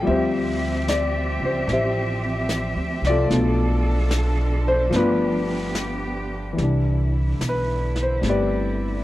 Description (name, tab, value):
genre	jazz ballad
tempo	73 BPM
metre	4/4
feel	swing 67% on 8ths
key	unclear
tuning	A4 = 438 Hz
part	warm concert grand piano	accompaniment	0.0-9.0 s	B2 to E5	-23 LUFS	left 2 dB	none
part	rich studio cello section	sustained chords	0.0-9.0 s	B2 to E5	-28 LUFS	right 2 dB	none
part	upright bass	bass	0.1-9.0 s	G1 to D2	-24 LUFS	equal	none
part	vintage brush drum kit	drums	0.1-9.0 s	brushed snare drum, hi-hat, snare drum	-32 LUFS	equal	none
room	little or no reverb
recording	dry, close 1970s-style studio recording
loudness	-20 LUFS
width	side -15 dB against mid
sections	0.0-6.6 A section; 6.6-9.0 B section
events	none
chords	0.0 Dm11; 3.3 Bm7b5; 4.9 G7; 6.6 Cmaj9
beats	| 0.04 0.85 1.66 2.48 | 3.29 4.11 4.93 5.75 | 6.58 7.40 8.22